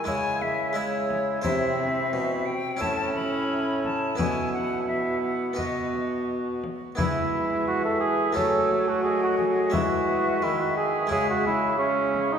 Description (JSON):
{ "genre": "classical, renaissance-style consort dance", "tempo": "87 BPM", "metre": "4/4", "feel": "straight", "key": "E major", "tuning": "A4 = 440 Hz", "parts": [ { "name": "silver concert flute", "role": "melody", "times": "0.0-12.4 s", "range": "C#5 to B5", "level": "-30 LUFS", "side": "left 3 dB", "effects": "none" }, { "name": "dark cor anglais", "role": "second line", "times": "0.0-12.4 s", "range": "C#4 to A4", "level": "-27 LUFS", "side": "right 3 dB", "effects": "none" }, { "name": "harpsichord", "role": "accompaniment", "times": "0.0-12.4 s", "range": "A2 to E5", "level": "-33 LUFS", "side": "equal", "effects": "none" }, { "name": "warm viola", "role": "accompaniment", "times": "0.0-12.4 s", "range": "G#3 to C#4", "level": "-32 LUFS", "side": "equal", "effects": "none" }, { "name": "warm bassoon", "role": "bass", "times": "0.0-12.4 s", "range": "A2 to F#3", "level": "-29 LUFS", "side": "equal", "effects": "none" }, { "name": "frame drum", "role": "percussion", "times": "0.1-12.4 s", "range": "none", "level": "-35 LUFS", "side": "left 3 dB", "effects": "none" } ], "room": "wet church reverb, RT60 3.3 s", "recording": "recorded in a church or concert hall", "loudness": "-23 LUFS", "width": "side -7 dB against mid", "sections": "0.0-7.0 A section; 7.0-12.4 A section", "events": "none", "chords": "0.1 C#m; 1.4 C; 2.8 A; 4.2 Bsus4; 5.6 B; 7.0 E; 8.4 F#m; 9.7 E; 11.1 C#m" }